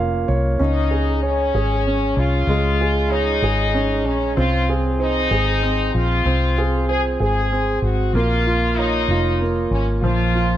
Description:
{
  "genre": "six-eight pop ballad",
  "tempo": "64 BPM (dotted quarters)",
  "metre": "6/8",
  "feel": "straight",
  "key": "Bb minor",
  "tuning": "A4 = 438 Hz",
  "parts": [
    { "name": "warm concert grand piano", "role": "accompaniment", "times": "0.0-10.6 s", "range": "F3 to F5", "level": "-21 LUFS", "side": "right 2 dB", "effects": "none" },
    { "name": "vintage muted fingered electric bass", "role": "bass", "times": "0.0-10.6 s", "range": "F1 to Db2", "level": "-20 LUFS", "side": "equal", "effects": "none" },
    { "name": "muted French horn section", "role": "second line", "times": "0.6-10.6 s", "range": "Db4 to Ab4", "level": "-22 LUFS", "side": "left 3 dB", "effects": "none" }
  ],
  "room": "moderate plate reverb, RT60 2.8 s",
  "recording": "dreamy mix soaked in reverb",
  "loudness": "-17 LUFS",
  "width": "side -12 dB against mid",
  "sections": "0.0-10.6 A section",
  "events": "grand piano fill 0.0-0.6",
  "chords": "0.0 Bbm; 0.6 Db; 4.4 Fm; 8.1 Bbm",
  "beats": "| 0.59 1.54 | 2.48 3.43 | 4.37 5.31 | 6.25 7.19 | 8.14 9.09 | 10.03"
}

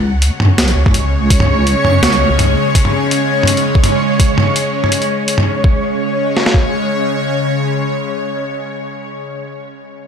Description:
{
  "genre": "half-time drum and bass",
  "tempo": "166 BPM",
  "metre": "4/4",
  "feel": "swing 54% on 16ths, half-time",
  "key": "unclear",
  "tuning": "A4 = 440 Hz",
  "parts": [
    { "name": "bowed-like drone", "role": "sustained chords", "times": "0.0-9.3 s", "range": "C#3 to C#5", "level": "-16 LUFS", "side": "left 2 dB", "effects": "built-in reverb, phaser, sidechain pumping" },
    { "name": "deep soft wobble bass", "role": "bass", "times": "0.0-2.6 s", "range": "B1 to F#2", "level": "-14 LUFS", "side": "equal", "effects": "chorus" },
    { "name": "backwards swelling texture", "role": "texture", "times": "0.7-5.6 s", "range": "C#5", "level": "-22 LUFS", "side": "right 5 dB", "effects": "built-in reverb" },
    { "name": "boom bap sampler-style drum kit", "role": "drums", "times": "0.2-5.4 s", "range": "hi-hat, snare drum, toms", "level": "-16 LUFS", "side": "equal", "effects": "none" },
    { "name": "boom bap sampler-style drum kit", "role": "drums", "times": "0.9-6.6 s", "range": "kick drum, snare drum", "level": "-13 LUFS", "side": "equal", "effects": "none" }
  ],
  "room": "light reverb",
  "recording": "none",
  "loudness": "-12 LUFS",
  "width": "side -7 dB against mid",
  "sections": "0.0-5.6 A section; 5.6-8.5 B section",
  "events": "none",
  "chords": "0.0 C#5",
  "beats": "0.22 0.58 0.94 | 1.30 1.66 2.02 2.39 | 2.75 3.11 3.47 3.83 | 4.19 4.55 4.92 5.28 | 5.64 6.00 6.36 6.72 | 7.08 7.45 7.81 8.17"
}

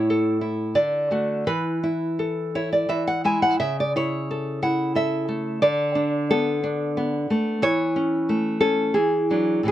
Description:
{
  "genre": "romantic piece for solo classical guitar",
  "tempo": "76-94 BPM",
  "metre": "3/4",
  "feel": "rubato",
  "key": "A major",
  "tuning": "A4 = 440 Hz",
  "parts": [
    { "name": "nylon-string guitar", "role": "solo", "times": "0.0-9.7 s", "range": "A2 to G#5", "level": "-20 LUFS", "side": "equal", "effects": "none" }
  ],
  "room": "little or no reverb",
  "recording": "close, detailed microphones",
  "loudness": "-20 LUFS",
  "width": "side -12 dB against mid",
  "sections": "0.0-9.7 A section",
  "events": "none",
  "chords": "0.0 A; 0.8 D; 1.5 Esus4; 2.9 E; 3.6 A/C#; 5.6 Bm7/D; 7.6 A/E; 8.9 E9",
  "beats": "0.10 0.76 | 1.47 2.19 2.89 | 3.61 4.30 4.97 | 5.63 6.29 6.97 | 7.62 8.27 8.95 | 9.68"
}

